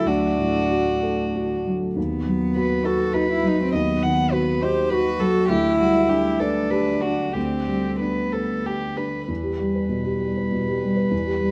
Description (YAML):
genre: neoclassical piano and strings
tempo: 91-104 BPM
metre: 3/4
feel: rubato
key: E minor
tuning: A4 = 440 Hz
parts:
  - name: warm violin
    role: melody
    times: 0.0-11.5 s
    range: F#4 to F#5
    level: -29 LUFS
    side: equal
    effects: slapback echo
  - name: warm cello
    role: second line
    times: 0.0-11.5 s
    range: G3 to G4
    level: -27 LUFS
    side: equal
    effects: none
  - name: felt-muted upright piano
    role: accompaniment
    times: 0.0-11.5 s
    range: D2 to D#5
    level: -25 LUFS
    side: equal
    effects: none
room: light reverb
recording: dark, warm production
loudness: -22 LUFS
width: mono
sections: 0.0-9.3 A section; 9.3-11.5 B section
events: none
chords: 0.0 D; 2.0 B/D#; 5.5 G/D; 9.3 Em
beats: | 0.08 0.71 1.35 | 1.97 2.57 3.16 | 3.75 4.34 4.92 | 5.50 6.10 6.71 | 7.35 8.01 8.66 | 9.29 9.91 10.52 | 11.12